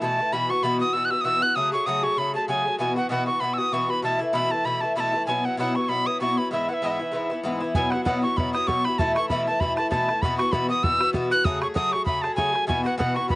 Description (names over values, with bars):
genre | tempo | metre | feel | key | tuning
celtic folk, Celtic reel | 194 BPM | 4/4 | swing 55% on 8ths | E major | A4 = 440 Hz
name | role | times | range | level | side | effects
tin whistle | melody | 0.0-13.4 s | D#5 to F#6 | -24 LUFS | equal | none
Irish bouzouki | accompaniment | 0.0-13.4 s | G#2 to G#4 | -25 LUFS | left 1 dB | none
bodhran | percussion | 7.7-13.4 s | none | -27 LUFS | right 1 dB | none
room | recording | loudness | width
little or no reverb | recorded outdoors, with no room sound, nothing above 10.8 kHz | -21 LUFS | side -20 dB against mid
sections
0.0-7.7 A section; 7.7-13.4 A section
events
none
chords
0.3 Esus2; 1.6 F#madd9; 2.8 Esus2; 4.0 Asus2; 5.3 Esus2; 6.5 E; 7.7 Esus2; 9.0 Asus2; 10.2 Esus2; 11.5 F#madd9; 12.7 Esus2